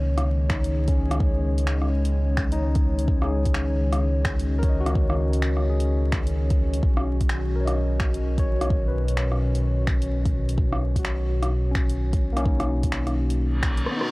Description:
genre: future garage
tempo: 128 BPM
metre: 4/4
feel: swing 62% on 16ths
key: unclear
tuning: A4 = 440 Hz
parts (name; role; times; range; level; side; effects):
- barky tine electric piano; accompaniment; 0.0-14.1 s; A#3 to D#5; -32 LUFS; left 2 dB; overdrive, sidechain pumping, analog delay
- warbly tape-like pad; sustained chords; 0.0-13.9 s; B2 to C#5; -30 LUFS; equal; chorus, built-in reverb, sidechain pumping
- warm sub bass; bass; 0.0-13.9 s; B1 to C#2; -24 LUFS; equal; transformer saturation, sidechain pumping
- deep house drum kit; drums; 0.2-14.1 s; finger snaps, hi-hat, rim click; -31 LUFS; equal; none
- electronic kick drum; drums; 0.5-13.7 s; none; -24 LUFS; equal; none
- reverse cymbal; sound effects; 13.5-14.1 s; none; -31 LUFS; equal; none
room: digital ambience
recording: dry, gritty hardware recording, vinyl crackle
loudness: -21 LUFS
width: side -22 dB against mid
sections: 0.0-14.1 A section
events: reverse cymbal 13.5-14.1; drum fill 13.9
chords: 0.0 C#sus2; 6.8 Badd9

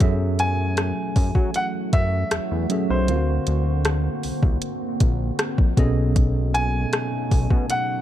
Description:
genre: contemporary R&B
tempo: 78 BPM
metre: 4/4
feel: straight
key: unclear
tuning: A4 = 440 Hz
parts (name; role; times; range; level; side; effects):
- tine electric piano; accompaniment; 0.0-8.0 s; B2 to E#5; -26 LUFS; right 1 dB; medium stereo tremolo
- deep dark ambient pad; sustained chords; 0.0-8.0 s; C#3 to F#4; -31 LUFS; right 2 dB; chorus, built-in reverb, sidechain pumping
- fat analog bass; bass; 0.0-7.7 s; A#1 to F#3; -23 LUFS; equal; none
- smooth R&B drum kit; drums; 0.0-7.9 s; hi-hat, kick drum, rim click; -20 LUFS; equal; none
- clear grand piano; melody; 0.4-8.0 s; B#4 to G#5; -27 LUFS; equal; digital delay
room: little or no reverb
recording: dark, warm production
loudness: -19 LUFS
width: side -12 dB against mid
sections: 0.0-8.0 A section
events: none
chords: 0.0 F#m9; 3.1 D7alt; 5.8 B13

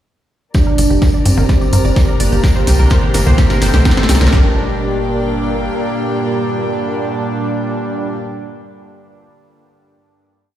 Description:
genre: melodic techno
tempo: 127 BPM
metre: 4/4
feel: straight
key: G minor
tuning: A4 = 440 Hz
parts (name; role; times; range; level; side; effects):
- expressive portamento lead; melody; 0.5-8.2 s; A3 to D4; -22 LUFS; right 2 dB; wide subtle chorus, sidechain pumping, tape echo
- rich chamber string section; sustained chords; 0.5-8.2 s; Bb3 to Bb5; -26 LUFS; left 2 dB; sidechain pumping, low-pass filter
- wide unison pluck; arpeggios; 0.5-4.5 s; G4 to D5; -25 LUFS; equal; phaser, sidechain pumping, tape echo
- brassy analog pad; stabs; 0.5-8.2 s; Bb2 to D4; -22 LUFS; right 3 dB; chorus, tremolo, sidechain pumping, tape echo
- overtone-sweeping drone; drone; 1.4-8.2 s; G2 to D4; -30 LUFS; left 1 dB; chorus, built-in reverb, sidechain pumping
- deep house drum kit; drums; 0.5-4.4 s; congas, hi-hat, snare drum; -20 LUFS; left 1 dB; overdrive, studio reverb
- punchy analog drum machine; drums; 0.5-4.4 s; kick drum, snare drum; -13 LUFS; equal; studio reverb
- tambourine; percussion; 0.5-4.3 s; none; -29 LUFS; left 3 dB; none
- riser; sound effects; 2.3-4.3 s; none; -26 LUFS; right 1 dB; none
- warbly tape-like pad; texture; 1.3-8.4 s; G4 to Bb5; -26 LUFS; left 1 dB; chorus, built-in reverb, sidechain pumping
- tight sequencer bass; bass; 0.8-5.7 s; G1 to G2; -14 LUFS; equal; sidechain pumping
room: light reverb, digital ambience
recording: played on a big sound system in a bare room, stone room reverb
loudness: -12 LUFS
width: side -12 dB against mid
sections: 0.5-4.3 build; 4.3-8.1 final chord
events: build-up 0.5-4.3; drum fill 0.5-4.3; filter sweep on synth pluck 0.5-4.3; filter sweep on string section 0.5-4.3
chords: 0.5 Gm; 2.4 Cm7; 4.3 Gm

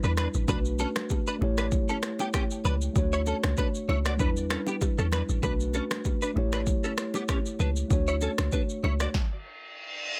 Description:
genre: afrobeats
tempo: 97 BPM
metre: 4/4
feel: swing 55% on 16ths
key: unclear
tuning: A4 = 440 Hz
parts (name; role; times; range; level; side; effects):
- mellow tine electric piano; accompaniment; 0.0-9.2 s; G3 to C#5; -34 LUFS; equal; none
- direct-recorded clean electric guitar; riff; 0.0-9.1 s; B3 to D5; -35 LUFS; equal; ensemble chorus, tape echo
- deep log drum bass; bass; 0.0-9.1 s; A1 to E2; -30 LUFS; equal; none
- deep house drum kit; drums; 0.0-9.3 s; finger snaps, kick drum, rim click, shaker, snare drum; -32 LUFS; equal; none
- congas and bongos; percussion; 0.5-9.0 s; none; -40 LUFS; equal; none
- reverse cymbal; sound effects; 9.4-10.2 s; none; -36 LUFS; equal; none
room: light reverb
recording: none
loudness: -28 LUFS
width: mono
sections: 0.0-10.2 A section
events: stop 9.1-10.2; reverse cymbal 9.4-10.2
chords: 0.5 Bm7; 1.4 A7; 3.0 Dmaj7; 4.2 Em7; 5.4 Bm7; 6.4 A7; 7.9 Dmaj7; 9.1 N.C.

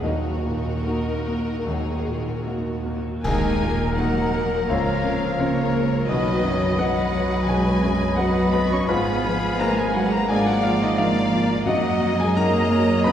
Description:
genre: classical, romantic movement for piano and orchestra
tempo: 70-89 BPM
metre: 4/4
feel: rubato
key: Eb minor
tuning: A4 = 440 Hz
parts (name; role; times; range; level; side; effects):
- clear concert grand piano; melody; 0.0-13.1 s; B1 to Db6; -23 LUFS; left 1 dB; none
- rich symphonic violin section; melody; 0.0-13.1 s; Bb4 to Eb5; -31 LUFS; left 4 dB; none
- rich chamber violin section; second line; 0.0-13.1 s; Eb4 to Db6; -32 LUFS; left 2 dB; none
- rich chamber viola section; accompaniment; 0.0-13.1 s; F#3 to Bb4; -30 LUFS; right 1 dB; none
- warm French horn section; sustained chords; 0.0-13.1 s; Gb3 to F#4; -34 LUFS; left 2 dB; none
- clear chamber double bass section; bass; 0.0-13.1 s; Ab1 to Gb2; -29 LUFS; right 2 dB; none
- rich chamber cello section; bass; 0.0-13.1 s; Eb2 to Db4; -29 LUFS; right 2 dB; none
- cymbal swell, clash cymbals and concert bass drum; percussion; 0.0-4.7 s; none; -34 LUFS; equal; none
- warm oboe; second line; 3.2-13.1 s; Bb4 to F5; -32 LUFS; equal; none
- mellow bassoon; accompaniment; 3.2-13.1 s; Eb3 to F#3; -32 LUFS; left 2 dB; none
- timpani; percussion; 3.2-4.3 s; Eb3; -35 LUFS; equal; none
- flute section; second line; 3.3-13.1 s; Bb5 to B5; -34 LUFS; left 1 dB; none
- dark clarinet; second line; 4.7-13.1 s; Bb4 to Ab5; -31 LUFS; left 1 dB; none
room: wet concert hall reverb, RT60 2.4 s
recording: heard from further back in the room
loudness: -19 LUFS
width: side -9 dB against mid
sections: 0.0-3.2 A section; 3.2-13.1 A section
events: band accent 3.2-4.0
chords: 0.0 Ebm; 4.7 Bbm/Db; 6.1 B; 8.9 Fdim/Ab; 10.3 Bb7/Ab; 11.7 Ebm/Gb

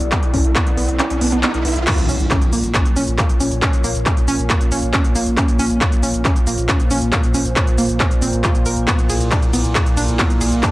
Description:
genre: driving peak-time techno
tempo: 137 BPM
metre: 4/4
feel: straight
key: Bb harmonic minor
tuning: A4 = 440 Hz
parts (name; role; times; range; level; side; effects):
- saturated sub bass; bass; 0.0-10.6 s; Bb1 to B1; -23 LUFS; equal; tube saturation, sidechain pumping, low-pass filter
- techno drum kit; drums; 0.0-10.7 s; crash cymbal, handclaps, hi-hat, ride cymbal, shaker; -21 LUFS; equal; cassette tape
- riser and impact; sound effects; 0.0-3.6 s; none; -25 LUFS; equal; none
- warbly tape-like pad; texture; 0.0-10.7 s; E4 to F#5; -27 LUFS; right 1 dB; chorus, built-in reverb, sidechain pumping, cassette tape
- analog pluck; riff; 0.1-10.7 s; Bb3 to Bb4; -23 LUFS; right 1 dB; chorus, sidechain pumping, cassette tape, tape echo
- electronic kick drum; drums; 0.1-10.7 s; none; -18 LUFS; equal; cassette tape
- analog drone; drone; 2.7-10.7 s; Bb2; -23 LUFS; equal; chorus, sidechain pumping, cassette tape
room: moderate spring reverb, RT60 1.9 s, digital ambience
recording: home recording on cassette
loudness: -14 LUFS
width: side -18 dB against mid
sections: 0.0-1.9 A section; 1.9-10.7 B section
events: riser 0.0-1.9; kick drops out 1.0-1.9; drop 1.9-10.7; impact 1.9-3.6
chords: 0.0 Bm; 1.9 Bbm; 8.9 Bm

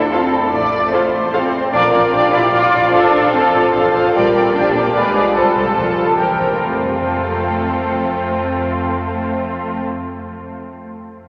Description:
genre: cinematic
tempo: 148 BPM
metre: 3/4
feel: straight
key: F major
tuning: A4 = 445 Hz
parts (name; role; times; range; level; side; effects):
- muted studio violin section; melody; 0.0-9.8 s; F4 to D5; -23 LUFS; equal; none
- muted studio cello section; bass; 0.0-9.8 s; E3 to F4; -23 LUFS; equal; none
- muted studio violin section; second line; 0.1-9.8 s; F4 to A5; -22 LUFS; equal; none
- muted studio viola section; accompaniment; 0.1-9.8 s; C4 to D5; -21 LUFS; equal; none
- muted studio double bass section; bass; 0.5-9.8 s; A1 to F2; -31 LUFS; equal; none
room: wet cathedral reverb, RT60 6.6 s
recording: none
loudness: -16 LUFS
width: mono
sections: 0.0-6.6 A section; 6.6-9.0 B section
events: none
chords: 0.0 F; 0.5 F/A; 1.7 Bb; 2.9 F/A; 4.1 Gm7/Bb; 5.0 Bdim7; 5.4 F/C; 6.2 C7; 6.6 F

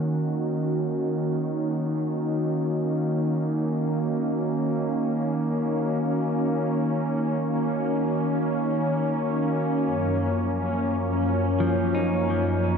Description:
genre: ambient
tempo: free time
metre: none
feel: none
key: F# major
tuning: A4 = 440 Hz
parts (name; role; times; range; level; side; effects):
- warm analog pad; sustained chords; 0.0-12.8 s; F#2 to A#4; -23 LUFS; equal; wide subtle chorus
- clean electric guitar; arpeggios; 11.6-12.8 s; E#3 to D#4; -26 LUFS; equal; diffuse ambient delay
room: wet concert hall reverb, RT60 2.4 s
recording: worn, warbling old tape, cassette tape, warbly pitch drift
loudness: -23 LUFS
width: side -6 dB against mid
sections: 0.0-12.8 A section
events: none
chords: 0.0 F#6; 9.9 A#m/F#

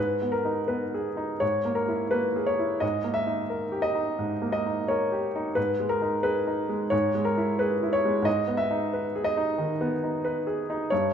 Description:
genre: classical, romantic character piece for solo piano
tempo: 89 BPM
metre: 4/4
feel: uneven beats, rubato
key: G# minor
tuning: A4 = 439 Hz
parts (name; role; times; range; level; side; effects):
- clear upright piano; solo; 0.0-11.1 s; G2 to E5; -24 LUFS; equal; none
room: moderate recital hall reverb, RT60 1.4 s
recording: minimal, uncompressed stereo recording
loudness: -24 LUFS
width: side -8 dB against mid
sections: 0.0-11.1 A section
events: none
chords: 0.0 G#m; 1.4 A#m7b5/G#; 2.8 D#/G#; 5.6 G#m; 6.9 A#m7b5/G#; 8.3 G#m

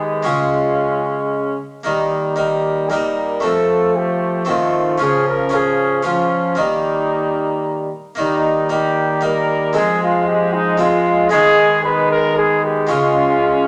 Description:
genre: classical, renaissance-style consort dance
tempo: 114 BPM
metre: 3/4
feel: straight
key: Eb mixolydian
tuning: A4 = 441 Hz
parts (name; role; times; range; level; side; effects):
- dark cornet; melody; 0.0-13.7 s; Eb4 to Cb5; -21 LUFS; equal; none
- mellow cor anglais; second line; 0.0-13.7 s; Ab3 to Db4; -28 LUFS; equal; none
- harpsichord; accompaniment; 0.0-13.7 s; Db3 to Ab4; -24 LUFS; equal; none
- mellow bassoon; accompaniment; 0.0-13.7 s; F3 to Ab3; -23 LUFS; equal; none
- warm trombone; bass; 0.0-13.7 s; Db3 to G3; -27 LUFS; equal; none
room: wet stone room reverb, RT60 1.2 s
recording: none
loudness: -17 LUFS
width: mono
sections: 0.0-8.2 A section; 8.2-13.7 A section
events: none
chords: 0.3 Db; 1.9 Eb; 3.4 F; 5.0 Db; 6.6 Eb; 9.8 Fm; 11.3 Abm/Eb; 12.9 Db

